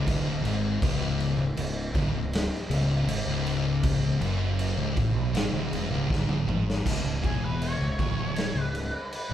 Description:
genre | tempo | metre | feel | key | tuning
stoner and doom metal | 80 BPM | 4/4 | straight | unclear | A4 = 440 Hz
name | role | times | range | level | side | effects
thick fuzz guitar | riff | 0.0-9.3 s | C#2 to B2 | -30 LUFS | left 6 dB | distortion
thick fuzz guitar | riff | 0.0-9.3 s | C#2 to B2 | -31 LUFS | right 5 dB | distortion
fuzz fingered electric bass | bass | 0.0-9.3 s | C#1 to B1 | -32 LUFS | equal | overdrive, tube saturation
raw garage drum kit | drums | 0.1-9.3 s | crash cymbal, kick drum, snare drum, toms | -30 LUFS | equal | none
octave-fuzz lead guitar | melody | 7.3-9.3 s | G#4 to C#5 | -34 LUFS | equal | distortion
room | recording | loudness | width
moderate large studio reverb, RT60 1.2 s | band playing live in one room | -24 LUFS | side -11 dB against mid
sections
0.0-6.8 A section; 6.8-9.3 B section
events
drum fill 6.1-6.8; lead electric guitar solo 6.8-9.3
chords
0.0 C#5; 6.8 C#m

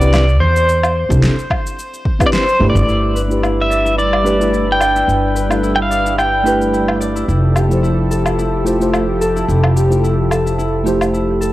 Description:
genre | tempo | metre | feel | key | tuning
sunset chillout | 109 BPM | 4/4 | swing 54% on 16ths | G mixolydian | A4 = 440 Hz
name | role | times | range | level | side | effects
pedal steel guitar | melody | 0.0-7.0 s | C5 to G5 | -17 LUFS | equal | analog delay
mellow FM electric piano | accompaniment | 0.0-11.5 s | F3 to C5 | -20 LUFS | equal | chorus, auto-pan, tape echo
upright bass | bass | 0.0-11.5 s | F1 to E2 | -17 LUFS | equal | none
electronic cabasa, snare drum and woodblock | drums | 0.0-11.5 s | none | -22 LUFS | equal | overdrive, small room ambience
electronic kick drum | drums | 1.1-2.3 s | none | -18 LUFS | equal | overdrive, small room ambience
lush unison pad | sustained chords | 2.9-11.5 s | F3 to B4 | -21 LUFS | equal | chorus
Celtic harp | arpeggios | 2.9-11.5 s | E4 to D5 | -22 LUFS | left 1 dB | low-pass filter, tape echo
room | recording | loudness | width
light reverb, digital ambience | dry, gritty hardware recording, transformer saturation, cassette tape | -12 LUFS | side -16 dB against mid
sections
0.0-2.9 A section; 2.9-11.5 B section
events
band accent 2.3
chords
0.0 Cmaj9; 2.9 G6; 7.3 Fmaj9

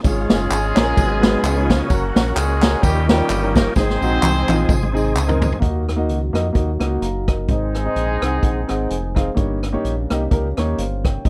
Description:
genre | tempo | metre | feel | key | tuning
uptempo gospel | 128 BPM | 4/4 | swing 56% on 8ths | unclear | A4 = 441 Hz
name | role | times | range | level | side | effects
warm grand piano | accompaniment | 0.0-11.3 s | G2 to Bb5 | -26 LUFS | equal | none
round analog bass | bass | 0.0-11.3 s | F1 to F2 | -24 LUFS | equal | none
swinging big-band drum kit | drums | 0.0-11.3 s | hi-hat, kick drum, ride cymbal, rim click, snare drum, toms | -21 LUFS | equal | none
tambourine and handclaps | percussion | 0.0-5.5 s | none | -31 LUFS | equal | none
clear horn section | melody | 0.1-9.1 s | F3 to C5 | -26 LUFS | equal | none
tonewheel organ | sustained chords | 0.1-5.6 s | F3 to Ab4 | -30 LUFS | equal | slow rotary speaker, chorus vibrato
mellow French horn section | sustained chords | 5.6-11.3 s | Eb3 to Gb4 | -33 LUFS | equal | none
room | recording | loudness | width
little or no reverb | none | -19 LUFS | mono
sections
0.0-5.6 A section; 5.6-11.3 B section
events
drum fill 3.8-5.6; grand piano fill 8.7-9.4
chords
0.1 Db; 1.0 Abm7; 1.4 Db9; 1.9 Gb; 2.8 Eb9; 3.8 Ab; 5.6 Ebm; 7.5 Ab; 9.4 Eb7/G

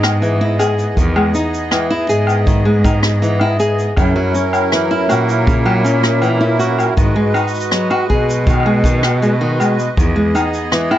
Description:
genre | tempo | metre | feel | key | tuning
folktronica | 80 BPM | 4/4 | straight | E lydian | A4 = 440 Hz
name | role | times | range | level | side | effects
accordion | sustained chords | 0.0-11.0 s | F#3 to D#5 | -20 LUFS | right 1 dB | light tremolo tuning
flamenco guitar | arpeggios | 0.0-11.0 s | C#3 to G#4 | -18 LUFS | equal | vintage 12-bit sampler grit, tape echo
rich cello | bass | 0.0-10.3 s | E2 to B2 | -17 LUFS | equal | none
rim click, woodblock and shaker | drums | 0.0-11.0 s | none | -20 LUFS | left 2 dB | none
kick drum | drums | 1.0-10.1 s | none | -16 LUFS | equal | none
room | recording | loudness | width
light reverb | nothing above 7.9 kHz | -12 LUFS | side -12 dB against mid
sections
0.0-11.0 A section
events
none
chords
0.0 Emaj7; 4.0 F#7; 7.0 G#m7; 10.0 Emaj7

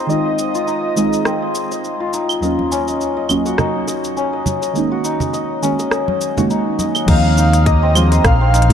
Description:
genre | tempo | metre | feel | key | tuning
organic downtempo | 103 BPM | 4/4 | swing 56% on 16ths | unclear | A4 = 441 Hz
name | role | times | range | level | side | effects
breathy flute-like synth lead | melody | 0.0-2.1, 7.1-8.7 s | C5 to F5 | -21 LUFS | right 1 dB | tremolo, analog chorus, tape echo
deep mellow chord stab | accompaniment | 0.0-8.7 s | Eb2 to Ab4 | -20 LUFS | right 2 dB | chorus, sidechain pumping, tape echo
santur | arpeggios | 0.0-8.7 s | Bb3 to Eb5 | -20 LUFS | left 3 dB | low-pass filter, tape echo
bronze singing bowl | texture | 0.0-7.1 s | none | barely audible | none | none
organic electronic drum kit | drums | 0.1-8.7 s | claves, crash cymbal, hi-hat, rim click, shaker | -23 LUFS | equal | none
congas and bongos | percussion | 2.6-7.1 s | none | -24 LUFS | right 2 dB | none
mellow fretless electric bass | bass | 7.1-8.7 s | Bb1 to Ab2 | -13 LUFS | equal | sidechain pumping
electronic kick drum | drums | 7.1-8.4 s | none | -15 LUFS | equal | none
room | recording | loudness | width
light reverb, digital ambience | dark, warm production | -14 LUFS | side -8 dB against mid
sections
0.0-7.1 A section; 7.1-8.7 B section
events
none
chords
0.0 Fm7/Eb; 2.4 Ebm9; 4.8 Gb69/Eb; 7.1 Fm7

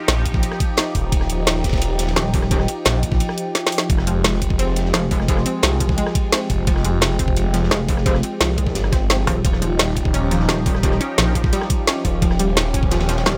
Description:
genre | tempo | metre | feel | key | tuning
dark technical drum and bass | 173 BPM | 4/4 | straight | unclear | A4 = 440 Hz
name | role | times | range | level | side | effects
sweeping resonant pad | sustained chords | 0.0-13.4 s | F3 to G4 | -28 LUFS | equal | chorus, sidechain pumping
phased detuned saw bass | bass | 0.1-13.2 s | Eb1 to C2 | -23 LUFS | equal | phaser, overdrive, sidechain pumping
crunchy breakbeat drum kit | drums | 0.1-13.3 s | ride cymbal, snare drum | -35 LUFS | equal | high-pass filter on cymbals, high-pass filter on snare, high-pass filter on room
drum and bass drum kit | drums | 0.1-13.3 s | hi-hat, rim click, snare drum | -23 LUFS | equal | overdrive
electronic kick drum | drums | 0.3-12.9 s | none | -23 LUFS | equal | overdrive
metallic wobble bass | bass | 2.2-2.7, 4.9-5.4, 7.7-11.0, 13.3-13.4 s | Eb1 to F1 | -23 LUFS | equal | chorus
analog pluck | arpeggios | 4.1-13.3 s | F3 to Db4 | -28 LUFS | equal | chorus, sidechain pumping, dub echo
room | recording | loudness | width
little or no reverb | none | -19 LUFS | mono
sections
0.0-13.4 A section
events
break 3.2-3.9; drum fill 3.5-3.9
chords
0.0 Ebadd9; 3.9 Fmadd9; 9.4 Ebadd9

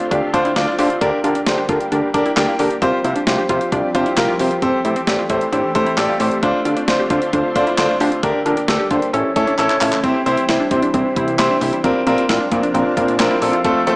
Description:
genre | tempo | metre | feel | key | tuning
synth-pop | 133 BPM | 4/4 | straight | unclear | A4 = 440 Hz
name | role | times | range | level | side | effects
warm grand piano | accompaniment | 0.0-14.0 s | A3 to D6 | -17 LUFS | equal | analog delay
soft string machine | sustained chords | 0.0-14.0 s | C3 to G4 | -26 LUFS | equal | phaser, ensemble chorus
analog pluck | arpeggios | 0.0-14.0 s | C4 to G4 | -23 LUFS | right 1 dB | chorus, analog delay
clean 12-bit digital drum machine | drums | 0.0-14.0 s | handclaps, hi-hat, kick drum, snare drum | -22 LUFS | equal | analog delay
fat analog bass | bass | 0.1-14.0 s | F1 to D3 | -22 LUFS | equal | none
room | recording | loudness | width
moderate echo chamber reverb, RT60 1.5 s | echo-heavy mix, small speaker sound | -14 LUFS | side -25 dB against mid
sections
0.0-10.0 A section; 10.0-14.0 B section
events
grand piano fill 1.9-2.8; drum fill 9.6-10.0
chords
0.0 Dm7; 1.0 Gm/D; 2.8 Csus4; 4.6 Am7; 6.4 Dm7; 8.2 Gm/D; 9.1 A; 10.0 C; 11.8 Bbadd9

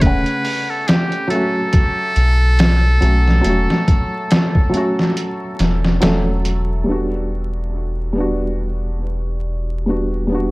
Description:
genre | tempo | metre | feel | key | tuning
trip hop | 70 BPM | 4/4 | swing 57% on 16ths | E dorian | A4 = 440 Hz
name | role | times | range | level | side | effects
trumpet with metal mute | melody | 0.0-6.0 s | G4 to B4 | -22 LUFS | equal | vintage 12-bit sampler grit, tape echo
felt-muted upright piano | accompaniment | 0.0-10.5 s | C#3 to F#5 | -21 LUFS | equal | harmonic tremolo, low-pass filter, tape echo
round analog bass | bass | 0.0-10.5 s | E1 to B1 | -18 LUFS | equal | none
trip hop sampler-style drum kit | drums | 0.0-6.7 s | hi-hat, kick drum, snare drum | -16 LUFS | equal | overdrive
room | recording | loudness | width
little or no reverb | vinyl crackle | -15 LUFS | side -22 dB against mid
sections
0.0-6.9 A section; 6.9-10.5 B section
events
break 5.2-6.9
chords
0.0 F#m/E; 6.9 Em9

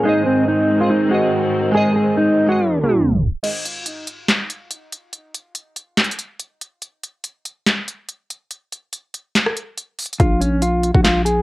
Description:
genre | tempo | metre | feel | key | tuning
hip hop, trap | 142 BPM | 4/4 | half-time | unclear | A4 = 441 Hz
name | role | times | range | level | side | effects
mellow electric guitar | melody | 0.0-3.2, 10.2-11.4 s | C4 to Ab4 | -18 LUFS | equal | low-pass filter, cassette tape, tape echo
glassy digital keys | accompaniment | 0.0-3.5 s | Ab3 to Eb5 | -19 LUFS | right 2 dB | chorus, low-pass filter, cassette tape
warm symphonic string section | sustained chords | 0.0-3.4 s | Ab2 to C4 | -23 LUFS | left 1 dB | stereo widening, low-pass filter, cassette tape
trap drum kit | drums | 3.4-11.4 s | crash cymbal, handclaps, hi-hat, kick drum, rim click, snare drum | -19 LUFS | equal | overdrive, cassette tape
growling 808-style bass | bass | 10.2-11.4 s | Bb1 | -18 LUFS | equal | none
room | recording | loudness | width
light reverb | home recording on cassette, tape stop | -16 LUFS | side -17 dB against mid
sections
0.0-3.4 A section; 3.4-11.4 B section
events
tape stop 2.6-3.4; break 3.4-10.2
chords
0.1 Ab; 3.4 N.C.; 10.2 Bb5

